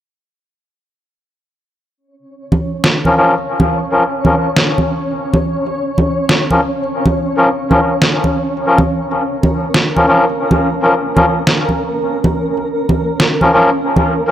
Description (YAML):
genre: deep dubstep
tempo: 139 BPM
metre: 4/4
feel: swing 55% on 16ths, half-time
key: Bb minor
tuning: A4 = 439 Hz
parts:
  - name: flickering grainy texture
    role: texture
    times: 2.4-14.3 s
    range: Db4 to Db5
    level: -20 LUFS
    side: equal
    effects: built-in reverb
  - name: congas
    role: percussion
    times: 2.5-14.0 s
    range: none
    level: -17 LUFS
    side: right 1 dB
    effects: dub echo
  - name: electronic snare drum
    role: drums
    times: 2.8-13.3 s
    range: none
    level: -15 LUFS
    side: equal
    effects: none
  - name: melodica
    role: stabs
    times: 3.1-14.3 s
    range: F3 to Bb4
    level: -14 LUFS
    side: left 1 dB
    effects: low-pass filter, dub echo
room: light reverb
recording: dry, gritty hardware recording, transformer saturation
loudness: -12 LUFS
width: side -11 dB against mid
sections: 2.0-14.3 A section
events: none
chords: 2.0 Bbm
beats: | 1.98 2.41 2.84 3.27 | 3.70 4.13 4.56 5.00 | 5.43 5.86 6.29 6.72 | 7.15 7.59 8.02 8.45 | 8.88 9.31 9.74 10.18 | 10.61 11.04 11.47 11.90 | 12.33 12.77 13.20 13.63 | 14.06